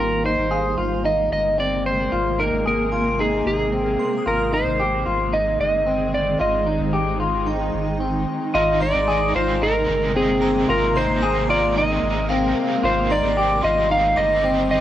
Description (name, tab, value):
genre	dream pop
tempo	112 BPM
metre	4/4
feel	straight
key	Ab lydian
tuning	A4 = 440 Hz
part	electric slide guitar	melody	0.0-14.8 s	Ab4 to F5	-21 LUFS	right 1 dB	tape echo
part	shimmering ambient pad	sustained chords	0.0-14.8 s	C3 to Eb4	-26 LUFS	right 1 dB	chorus, built-in reverb, cassette tape
part	clean electric guitar	arpeggios	0.0-14.8 s	C4 to Ab4	-24 LUFS	left 3 dB	lush chorus, cassette tape, tape echo
part	warm sub bass	bass	0.0-14.8 s	G1 to Ab1	-27 LUFS	equal	none
part	shimmering bell with halo	texture	0.5-14.8 s	F5 to F6	-34 LUFS	right 1 dB	ensemble chorus, cassette tape, tape echo
part	cranked stack guitar	accompaniment	8.5-14.8 s	Ab2 to C5	-29 LUFS	right 3 dB	overdrive, tremolo, analog chorus, cassette tape
room	moderate small room reverb, RT60 0.5 s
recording	home recording on cassette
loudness	-18 LUFS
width	side -12 dB against mid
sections	0.0-8.5 A section; 8.5-14.8 B section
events	none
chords	0.0 Abadd9; 4.3 Cm; 8.5 Abadd9; 12.8 Ab